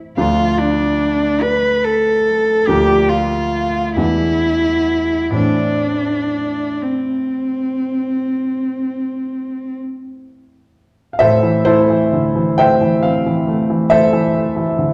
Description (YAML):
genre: classical, romantic duo for cello and grand piano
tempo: 40-49 BPM (dotted quarters)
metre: 12/8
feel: rubato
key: A minor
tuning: A4 = 438 Hz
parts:
  - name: clear grand piano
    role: accompaniment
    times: 0.0-14.9 s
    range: A1 to G5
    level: -18 LUFS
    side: equal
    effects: none
  - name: dark cello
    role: melody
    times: 0.2-9.8 s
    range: C4 to B4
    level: -19 LUFS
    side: equal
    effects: none
room: wet recital hall reverb, RT60 1.3 s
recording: dark, warm production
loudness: -16 LUFS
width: mono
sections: 0.0-11.2 A section; 11.2-14.9 A section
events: none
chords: 0.2 Dm; 2.7 Bb/D; 4.0 E7; 5.4 Am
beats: | 0.17 1.42 2.67 3.97 | 5.37 6.82 8.29 9.77 | 11.21 12.59 13.91